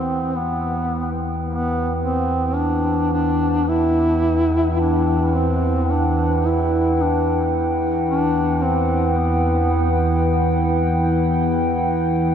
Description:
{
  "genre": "ambient",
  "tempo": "54 BPM",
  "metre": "4/4",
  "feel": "straight",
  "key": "E minor",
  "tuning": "A4 = 438 Hz",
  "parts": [
    { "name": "mellow duduk", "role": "melody", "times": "0.0-10.3 s", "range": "B3 to E4", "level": "-22 LUFS", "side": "equal", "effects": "tape echo" },
    { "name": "dark analog pad", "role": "sustained chords", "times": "0.0-12.3 s", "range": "E4 to G5", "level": "-22 LUFS", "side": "right 1 dB", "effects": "wide subtle chorus" },
    { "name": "analog drone", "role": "drone", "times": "0.0-12.3 s", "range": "E2", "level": "-21 LUFS", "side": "equal", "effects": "wide subtle chorus" }
  ],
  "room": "wet huge ambient reverb, RT60 7.7 s",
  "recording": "none",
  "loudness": "-17 LUFS",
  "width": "side -8 dB against mid",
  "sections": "0.0-12.3 A section",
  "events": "none",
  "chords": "0.0 Em",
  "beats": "0.32 1.43 2.54 | 3.65 4.76 5.88 6.99 | 8.10 9.21 10.32 11.43"
}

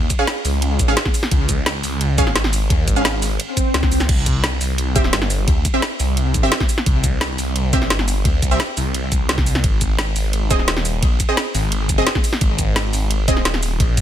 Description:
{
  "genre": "dark technical drum and bass",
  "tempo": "173 BPM",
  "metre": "4/4",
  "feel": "straight",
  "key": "unclear",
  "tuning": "A4 = 440 Hz",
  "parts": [
    { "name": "phased detuned saw bass", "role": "bass", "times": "0.0-14.0 s", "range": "Eb1 to Eb2", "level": "-20 LUFS", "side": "equal", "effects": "phaser, tube saturation" },
    { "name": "drum and bass drum kit", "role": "drums", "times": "0.1-14.0 s", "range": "crash cymbal, hi-hat, ride cymbal, shaker, snare drum", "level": "-22 LUFS", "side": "equal", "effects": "overdrive, studio ambience" },
    { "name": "electronic kick drum", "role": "drums", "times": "0.1-14.0 s", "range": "none", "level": "-18 LUFS", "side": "equal", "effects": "overdrive, studio ambience" },
    { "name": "orchestra-hit-like synth stab", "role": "stabs", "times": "0.2-13.3 s", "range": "C4 to F5", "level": "-24 LUFS", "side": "right 1 dB", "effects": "built-in reverb, ping-pong delay" },
    { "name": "swell", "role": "sound effects", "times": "3.5-4.1 s", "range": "none", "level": "-24 LUFS", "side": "equal", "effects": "none" }
  ],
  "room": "little or no reverb",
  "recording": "dense, heavily limited modern master",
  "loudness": "-16 LUFS",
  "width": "side -10 dB against mid",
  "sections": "0.0-14.0 A section",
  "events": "swell 3.5-4.1",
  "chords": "0.0 Db; 4.1 C5; 9.6 Ab5",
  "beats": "0.28 0.62 0.97 | 1.31 1.66 2.01 2.36 | 2.70 3.05 3.40 3.74 | 4.09 4.44 4.78 5.13 | 5.48 5.82 6.17 6.52 | 6.86 7.21 7.56 7.91 | 8.25 8.60 8.95 9.29 | 9.64 9.99 10.33 10.68 | 11.03 11.37 11.72 12.07 | 12.41 12.76 13.11 13.45 | 13.80"
}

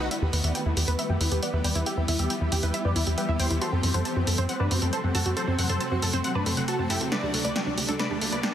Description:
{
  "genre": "uplifting trance",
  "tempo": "137 BPM",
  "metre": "4/4",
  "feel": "straight",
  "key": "E minor",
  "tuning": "A4 = 441 Hz",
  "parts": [
    { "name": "big supersaw lead", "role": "melody", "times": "0.0-8.5 s", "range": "C4 to F#5", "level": "-30 LUFS", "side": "equal", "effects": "phaser, low-pass filter, digital delay" },
    { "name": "analog pluck", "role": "arpeggios", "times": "0.0-8.5 s", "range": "D4 to A5", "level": "-33 LUFS", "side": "right 2 dB", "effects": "chorus, digital delay" },
    { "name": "tight sequencer bass", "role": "bass", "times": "0.0-8.4 s", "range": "F#1 to G2", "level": "-27 LUFS", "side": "equal", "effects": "none" },
    { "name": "punchy analog drum machine", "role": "drums", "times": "0.1-8.5 s", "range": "hi-hat, snare drum", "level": "-30 LUFS", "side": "right 1 dB", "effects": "none" },
    { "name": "riser", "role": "sound effects", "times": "7.7-8.5 s", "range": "none", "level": "-35 LUFS", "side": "right 2 dB", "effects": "none" }
  ],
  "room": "light reverb, digital ambience",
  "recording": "dense, heavily limited modern master, high-pass filter",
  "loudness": "-24 LUFS",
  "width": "side -10 dB against mid",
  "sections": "0.1-8.5 A section",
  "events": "build-up 0.1-8.5; filter sweep on supersaw synth 0.1-8.5; filter sweep on synth pluck 0.1-8.5; drum fill 7.1-8.5; riser 7.7-8.5",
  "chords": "0.1 Em; 3.6 F#dim; 7.1 Dsus4",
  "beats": "| 0.11 0.55 0.99 1.43 | 1.86 2.30 2.74 3.18 | 3.62 4.05 4.49 4.93 | 5.37 5.80 6.24 6.68 | 7.12 7.56 8.00 8.43"
}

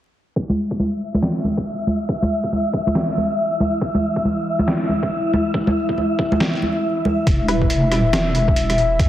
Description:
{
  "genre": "deep dubstep",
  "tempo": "139 BPM",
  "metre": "4/4",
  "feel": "swing 62% on 16ths, half-time",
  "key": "unclear",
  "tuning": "A4 = 441 Hz",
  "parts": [
    { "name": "dark analog pad", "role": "sustained chords", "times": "2.6-9.1 s", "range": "E4 to E5", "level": "-24 LUFS", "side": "left 2 dB", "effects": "chorus" },
    { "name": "electronic kick drum", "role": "drums", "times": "0.4-9.1 s", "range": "none", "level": "-22 LUFS", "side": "equal", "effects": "overdrive, high-pass filter on kick, high-pass filter on room" },
    { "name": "wind-like tuned noise texture", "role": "texture", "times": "1.1-7.3 s", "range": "E5", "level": "-26 LUFS", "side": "equal", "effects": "built-in reverb" },
    { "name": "congas", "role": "percussion", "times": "0.5-7.2 s", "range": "none", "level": "-21 LUFS", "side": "equal", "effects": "dub echo" },
    { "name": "trip hop sampler-style drum kit", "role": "drums", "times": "1.2-9.1 s", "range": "hi-hat, rim click, snare drum", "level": "-24 LUFS", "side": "equal", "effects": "overdrive" },
    { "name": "deep soft wobble bass", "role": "bass", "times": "7.3-9.1 s", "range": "E1 to D2", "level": "-19 LUFS", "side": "equal", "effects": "chorus" },
    { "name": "filtered dub chord stab", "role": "stabs", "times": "7.5-7.7 s", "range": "G3 to B4", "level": "-26 LUFS", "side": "equal", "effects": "phaser, analog chorus, dub echo" }
  ],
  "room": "moderate lush hall reverb, RT60 2.1 s",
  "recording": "heavily compressed radio sound, multiband compression, vinyl crackle, low-pass filter",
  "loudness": "-17 LUFS",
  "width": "side -12 dB against mid",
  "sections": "0.4-7.3 A section; 7.3-9.1 B section",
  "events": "filter sweep on analog synth pad 0.4-7.3; filter sweep 0.4-7.3",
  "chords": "none",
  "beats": "| 0.36 0.79 1.23 1.66 | 2.09 2.52 2.95 3.38 | 3.81 4.25 4.68 5.11 | 5.54 5.97 6.41 6.84 | 7.27 7.70 8.13 8.56 | 8.99"
}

